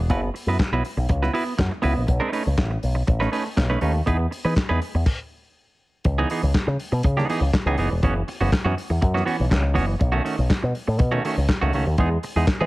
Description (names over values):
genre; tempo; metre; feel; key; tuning
disco; 121 BPM; 4/4; straight; C# minor; A4 = 440 Hz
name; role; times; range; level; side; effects
semi-hollow electric guitar; accompaniment; 0.0-12.7 s; D#3 to B4; -25 LUFS; right 3 dB; none
picked electric bass with an envelope filter; bass; 0.0-12.7 s; E1 to E3; -22 LUFS; equal; none
warm soul drum kit; drums; 0.1-12.6 s; crash cymbal, handclaps, hi-hat, kick drum, snare drum; -24 LUFS; equal; none
room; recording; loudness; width
studio ambience; none; -20 LUFS; side -19 dB against mid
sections
0.0-6.0 A section; 6.0-12.7 B section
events
stop 5.1-6.0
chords
0.1 F#7sus4; 2.1 B9; 4.1 Emaj7; 6.0 C#m9; 8.0 F#7sus4; 10.0 B9; 12.0 Emaj7